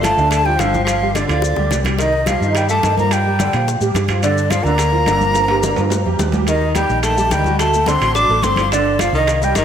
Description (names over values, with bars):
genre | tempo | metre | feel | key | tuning
Afro-Cuban jazz | 214 BPM | 4/4 | straight | G minor | A4 = 440 Hz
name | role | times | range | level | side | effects
concert flute | melody | 0.0-9.6 s | D5 to D6 | -18 LUFS | equal | analog delay
warm tenor saxophone | second line | 0.0-9.6 s | D3 to D4 | -23 LUFS | left 3 dB | none
clear concert grand piano | accompaniment | 0.0-9.6 s | D3 to A4 | -21 LUFS | right 3 dB | ensemble chorus
hollow-body short-scale fingered electric bass | bass | 0.0-9.6 s | G1 to Bb2 | -20 LUFS | equal | none
bongos | percussion | 0.0-9.6 s | none | -29 LUFS | left 7 dB | none
congas | percussion | 0.0-9.6 s | none | -26 LUFS | left 4 dB | none
maracas | percussion | 0.0-9.6 s | none | -31 LUFS | left 6 dB | none
timbales | percussion | 0.0-9.6 s | none | -26 LUFS | right 6 dB | none
room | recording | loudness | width
moderate lush hall reverb, RT60 2.0 s, small room ambience | dreamy mix soaked in reverb | -14 LUFS | side -8 dB against mid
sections
0.0-9.6 A section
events
drum fill 1.4-2.0, 5.4-6.5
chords
0.0 G7(no3); 2.0 Cm; 3.1 Gm7; 6.5 Ebmaj7; 7.6 D7; 8.7 G5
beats
0.04 0.32 0.60 | 0.88 1.16 1.43 1.71 | 1.99 2.27 2.55 2.83 | 3.11 3.39 3.67 3.95 | 4.23 4.51 4.79 5.08 | 5.36 5.64 5.92 6.20 | 6.48 6.76 7.04 7.32 | 7.60 7.88 8.16 8.44 | 8.72 9.00 9.28 9.56